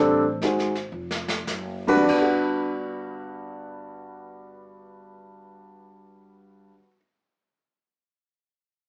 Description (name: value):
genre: jazz piano trio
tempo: 94-127 BPM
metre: 3/4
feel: swing 67% on 8ths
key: G major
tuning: A4 = 440 Hz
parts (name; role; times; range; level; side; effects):
- warm grand piano; melody; 0.0-7.0 s; G2 to C5; -25 LUFS; equal; none
- upright bass; bass; 0.0-6.8 s; F1 to A1; -40 LUFS; equal; none
- jazz brush drum kit; drums; 0.4-2.8 s; brushed snare drum, crash cymbal, hi-hat, kick drum, snare drum; -34 LUFS; equal; none
room: moderate studio reverb, RT60 0.5 s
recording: band playing live in one room, small speaker sound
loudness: -24 LUFS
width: mono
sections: 0.0-2.1 A section; 2.1-5.9 B section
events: slowing down 0.0-2.1; drum fill 0.9-1.5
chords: 0.4 Ab7(no3); 2.1 Gmaj7